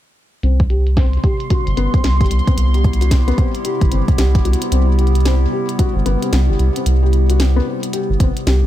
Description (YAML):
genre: IDM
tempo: 112 BPM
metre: 4/4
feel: swing 62% on 16ths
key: C major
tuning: A4 = 440 Hz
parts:
  - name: warbly tape-like pad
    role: sustained chords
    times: 1.2-8.7 s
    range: C3 to G4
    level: -23 LUFS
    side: left 1 dB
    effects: chorus, built-in reverb, vintage 12-bit sampler grit
  - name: felt-muted upright piano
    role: arpeggios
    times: 0.4-8.5 s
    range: B3 to G4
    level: -24 LUFS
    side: left 5 dB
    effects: low-pass filter, analog delay
  - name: round analog bass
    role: bass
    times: 0.4-8.7 s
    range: G1 to C2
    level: -14 LUFS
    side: equal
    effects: none
  - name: glitchy drum kit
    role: drums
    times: 0.4-8.6 s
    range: hi-hat, snare drum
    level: -25 LUFS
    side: equal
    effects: low-pass filter on hats, low-pass filter on snare, tape echo
  - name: bubbling stepped-filter texture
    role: texture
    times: 1.0-4.7 s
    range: C6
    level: -29 LUFS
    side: right 4 dB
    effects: chorus, built-in reverb, sidechain pumping
  - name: electronic kick drum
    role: drums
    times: 0.6-8.3 s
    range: none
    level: -16 LUFS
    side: equal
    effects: none
room: digital ambience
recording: echo-heavy mix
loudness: -13 LUFS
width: side -13 dB against mid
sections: 0.4-4.7 A section; 4.7-8.7 B section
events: filter sweep on drum 0.4-4.7; filter sweep on analog synth bass 0.4-4.7; filter sweep on felt piano 0.4-4.7; drum fill 4.5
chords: 0.4 Cmaj7